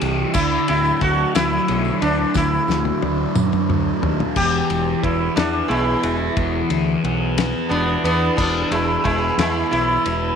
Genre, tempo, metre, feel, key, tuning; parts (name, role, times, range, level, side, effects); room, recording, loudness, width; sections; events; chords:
psychedelic rock; 60 BPM (dotted quarters); 6/8; straight; E mixolydian; A4 = 441 Hz
thick fuzz guitar; riff; 0.0-10.4 s; E2 to E4; -22 LUFS; equal; distortion, phaser
growling fingered electric bass; bass; 0.0-10.3 s; E1 to F#2; -24 LUFS; right 1 dB; overdrive
damped 70s drum kit; drums; 0.0-10.2 s; crash cymbal, kick drum, ride cymbal, snare drum, toms; -26 LUFS; left 4 dB
sitar; melody; 0.3-10.4 s; G#3 to G4; -21 LUFS; equal; slapback echo
tambourine; percussion; 0.3-3.6 s; -38 LUFS; right 15 dB
light reverb, small room ambience; 1960s-style stereo; -17 LUFS; side -7 dB against mid
0.0-4.4 A section; 4.4-10.4 B section
drum fill 2.4-4.4; sitar solo 4.4-10.4
0.3 Dadd9; 4.4 E